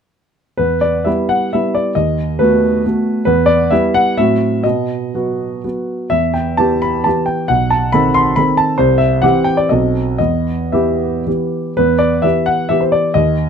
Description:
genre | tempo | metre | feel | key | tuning
classical, romantic triple-time dance for piano with dotted rhythms | 108-146 BPM | 3/4 | rubato | E minor | A4 = 440 Hz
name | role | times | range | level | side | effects
clear concert grand piano | solo | 0.6-13.5 s | B1 to C6 | -12 LUFS | equal | none
room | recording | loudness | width
light reverb | dark, warm production | -13 LUFS | side -7 dB against mid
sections
0.6-11.8 A section; 11.8-13.5 A section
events
none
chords
0.6 Em; 2.0 B7/D#; 3.3 Em; 4.2 F#dim/A; 4.6 B; 6.1 Em; 7.5 B7b9; 8.8 C; 9.7 B7b9; 10.2 Em

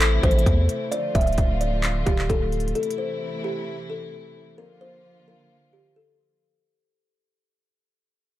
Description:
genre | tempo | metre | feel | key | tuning
hip hop, trap | 131 BPM | 4/4 | half-time | unclear | A4 = 440 Hz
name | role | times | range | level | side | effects
kalimba | melody | 0.0-6.4 s | G4 to E5 | -27 LUFS | left 2 dB | analog delay
dark chamber string section | sustained chords | 0.0-6.4 s | C3 to F4 | -32 LUFS | right 1 dB | none
long sustained 808-style bass | bass | 0.0-2.7 s | D1 to E2 | -23 LUFS | equal | none
trap drum kit | drums | 0.0-3.0 s | handclaps, hi-hat, kick drum | -23 LUFS | equal | none
room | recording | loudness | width
light reverb | echo-heavy mix | -21 LUFS | side -15 dB against mid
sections
0.0-6.4 A section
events
fade-out 0.0-6.4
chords
0.0 Am; 0.9 Dm; 2.8 Am; 4.6 Bb

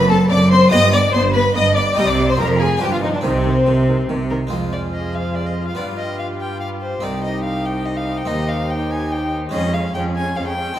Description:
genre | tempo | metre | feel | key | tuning
classical, baroque-style concerto movement with solo episodes | 144 BPM | 3/4 | straight | C minor | A4 = 438 Hz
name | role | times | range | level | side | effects
rich chamber violin section | melody | 0.0-10.8 s | B4 to Eb6 | -25 LUFS | left 4 dB | none
rich violin | melody | 0.0-10.8 s | C4 to Ab5 | -24 LUFS | left 1 dB | none
rich chamber violin section | second line | 0.0-10.8 s | C4 to Eb5 | -23 LUFS | left 2 dB | none
harpsichord | accompaniment | 0.0-10.8 s | C2 to A4 | -27 LUFS | right 1 dB | none
rich chamber cello section | bass | 0.0-10.7 s | C2 to C3 | -21 LUFS | right 1 dB | none
warm chamber double bass section | bass | 0.0-4.5 s | F1 to C2 | -23 LUFS | right 4 dB | none
rich chamber viola section | accompaniment | 0.1-10.8 s | Eb3 to F4 | -26 LUFS | equal | none
room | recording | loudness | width
wet recital hall reverb, RT60 1.6 s | none | -16 LUFS | side -11 dB against mid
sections
0.0-4.5 A section; 4.5-10.8 B section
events
none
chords
0.0 D7/F#; 0.7 G7; 2.0 Cm; 2.4 Fm; 2.8 G7; 3.2 Cm; 4.5 Fm; 5.8 G7; 7.0 Cm; 8.3 Cm/Eb; 9.5 Db/F

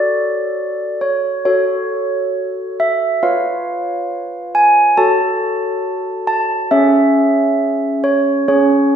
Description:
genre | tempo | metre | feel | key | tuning
classical, tune for handbells | 68 BPM | 4/4 | straight | F# minor | A4 = 441 Hz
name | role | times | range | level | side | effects
handbells | solo | 0.0-9.0 s | C#4 to A5 | -14 LUFS | right 1 dB | none
room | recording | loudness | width
wet recital hall reverb, RT60 1.4 s | recorded in a church or concert hall | -14 LUFS | side -8 dB against mid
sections
0.0-9.0 A section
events
none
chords
0.0 F#m; 3.2 C#7/E#; 5.0 F#m; 6.7 C#m

